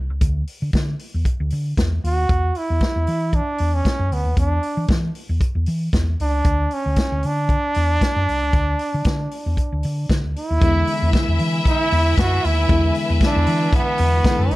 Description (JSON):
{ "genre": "disco", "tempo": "116 BPM", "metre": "4/4", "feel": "straight", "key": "unclear", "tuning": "A4 = 438 Hz", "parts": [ { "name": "hollow-body short-scale fingered electric bass", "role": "bass", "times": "0.0-14.6 s", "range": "C2 to E3", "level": "-20 LUFS", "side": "equal", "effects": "none" }, { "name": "vintage drum kit", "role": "drums", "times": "0.2-14.6 s", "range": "hi-hat, kick drum, snare drum", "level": "-21 LUFS", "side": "equal", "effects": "none" }, { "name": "brilliant trombone", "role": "melody", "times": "2.1-14.6 s", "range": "B3 to F#4", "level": "-22 LUFS", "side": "right 2 dB", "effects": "none" }, { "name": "bright studio violin section", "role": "second line", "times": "10.6-14.6 s", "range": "G#3 to E5", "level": "-26 LUFS", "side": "left 2 dB", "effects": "none" }, { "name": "tine electric piano", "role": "accompaniment", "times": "10.6-14.6 s", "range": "D3 to E4", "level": "-25 LUFS", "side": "left 4 dB", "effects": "none" }, { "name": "clear studio string section", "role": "sustained chords", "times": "10.6-14.6 s", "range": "B4 to G#5", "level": "-32 LUFS", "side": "left 3 dB", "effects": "none" } ], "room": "light reverb, small room reverb", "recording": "dark, warm production", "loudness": "-17 LUFS", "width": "side -18 dB against mid", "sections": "0.0-10.6 A section; 10.6-14.6 B section", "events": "none", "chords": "0.0 Dsus2; 2.3 N.C.; 10.6 E7", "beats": "| 0.21 0.73 1.25 1.77 | 2.29 2.81 3.33 3.85 | 4.37 4.89 5.41 5.93 | 6.45 6.97 7.49 8.01 | 8.53 9.05 9.57 10.09 | 10.61 11.13 11.65 12.17 | 12.69 13.21 13.72 14.24" }